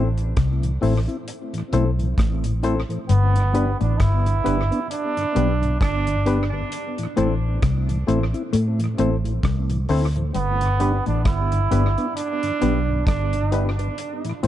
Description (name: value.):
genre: roots reggae.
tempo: 66 BPM.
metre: 4/4.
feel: swing 58% on 16ths.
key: G major.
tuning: A4 = 442 Hz.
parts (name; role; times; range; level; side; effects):
mellow tonewheel organ; accompaniment; 0.0-14.5 s; G2 to E4; -28 LUFS; equal; slow rotary speaker, tape echo.
mellow electric guitar; riff; 0.0-14.5 s; G2 to A3; -26 LUFS; left 5 dB; harmonic tremolo.
barky reed electric piano; stabs; 0.0-14.5 s; B3 to C5; -28 LUFS; left 4 dB; overdrive.
vintage muted fingered electric bass; bass; 0.0-14.5 s; G1 to A2; -21 LUFS; equal; none.
damped 70s drum kit; drums; 0.2-14.5 s; hi-hat, kick drum, rim click; -26 LUFS; equal; tape echo.
bright trombone; second line; 3.1-13.8 s; B3 to E4; -26 LUFS; right 4 dB; tape echo.
room: light reverb.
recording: echo-heavy mix, nothing above 10.6 kHz.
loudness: -19 LUFS.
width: side -12 dB against mid.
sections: 0.0-14.5 A section.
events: none.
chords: 0.0 Am; 3.1 G; 6.7 Am; 10.4 G.